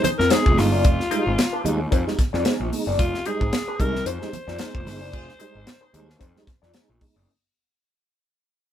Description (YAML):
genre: funk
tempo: 112 BPM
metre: 4/4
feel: swing 56% on 16ths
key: F dorian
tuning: A4 = 440 Hz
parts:
  - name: raspy alto saxophone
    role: melody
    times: 0.0-6.7 s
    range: F4 to C5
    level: -26 LUFS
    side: left 2 dB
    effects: none
  - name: mellow electric guitar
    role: accompaniment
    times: 0.0-7.3 s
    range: Eb4 to D5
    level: -28 LUFS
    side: left 5 dB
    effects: wah
  - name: mellow tonewheel organ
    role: stabs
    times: 0.0-7.2 s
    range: F3 to Eb4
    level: -28 LUFS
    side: right 3 dB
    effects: chorus vibrato, fast rotary speaker
  - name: fuzz picked electric bass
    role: bass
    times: 0.0-7.2 s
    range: F1 to F2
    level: -26 LUFS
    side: equal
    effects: overdrive
  - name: tight funk drum kit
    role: drums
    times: 0.0-7.2 s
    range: hi-hat, kick drum, snare drum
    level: -23 LUFS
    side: equal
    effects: none
  - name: congas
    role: percussion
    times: 0.0-7.1 s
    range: none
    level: -32 LUFS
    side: right 6 dB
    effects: none
  - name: warm horn section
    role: second line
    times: 5.1-5.3 s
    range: F4 to C5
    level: -48 LUFS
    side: right 2 dB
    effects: none
room: light reverb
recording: band playing live in one room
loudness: -19 LUFS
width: side -10 dB against mid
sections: 0.0-7.3 A section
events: fade-out 0.0-7.3; band accent 5.1-7.3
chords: 0.0 Fm7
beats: 0.31 | 0.85 1.39 1.92 2.46 | 2.99 3.53 4.06 4.60 | 5.13 5.67 6.21 6.74